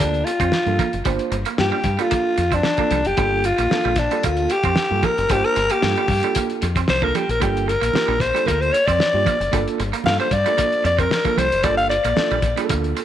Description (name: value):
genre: funk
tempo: 113 BPM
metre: 4/4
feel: straight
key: G minor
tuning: A4 = 440 Hz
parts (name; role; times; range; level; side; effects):
- growling alto saxophone; melody; 0.0-12.7 s; D4 to F5; -20 LUFS; left 2 dB; none
- semi-hollow electric guitar; riff; 0.0-13.0 s; G3 to C4; -28 LUFS; right 10 dB; none
- mellow reed electric piano; stabs; 0.0-13.0 s; A3 to C5; -27 LUFS; right 9 dB; fast tremolo
- deep dub fingered electric bass; bass; 0.0-12.9 s; F#1 to G2; -24 LUFS; left 1 dB; none
- cloth-damped thuddy drum kit; drums; 0.0-13.0 s; hi-hat, kick drum, snare drum; -25 LUFS; left 2 dB; none
- congas; percussion; 0.5-12.8 s; none; -31 LUFS; right 10 dB; none
room: light reverb, small room ambience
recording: 1960s-style stereo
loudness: -17 LUFS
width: side -10 dB against mid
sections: 0.0-13.0 A section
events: alto saxophone solo 0.0-13.0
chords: 0.0 Gm9